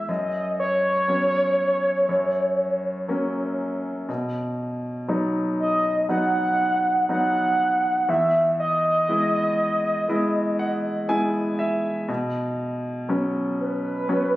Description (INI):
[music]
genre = pop ballad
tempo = 60 BPM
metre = 4/4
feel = straight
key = B major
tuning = A4 = 441 Hz
[part]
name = mellow horn-like synth lead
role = melody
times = 0.0-14.4 s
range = B4 to F#5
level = -22 LUFS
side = equal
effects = chorus
[part]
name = clear baby grand piano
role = accompaniment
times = 0.0-14.4 s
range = E2 to G#5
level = -25 LUFS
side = equal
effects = none
[sound]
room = light reverb, studio ambience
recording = recorded on a phone in the room, studio reverb, compression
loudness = -21 LUFS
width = side -16 dB against mid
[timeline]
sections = 0.0-14.4 A section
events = grand piano fill 10.1-12.1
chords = 0.1 F#sus4; 2.1 F#; 4.1 B; 8.1 E; 12.1 Bsus2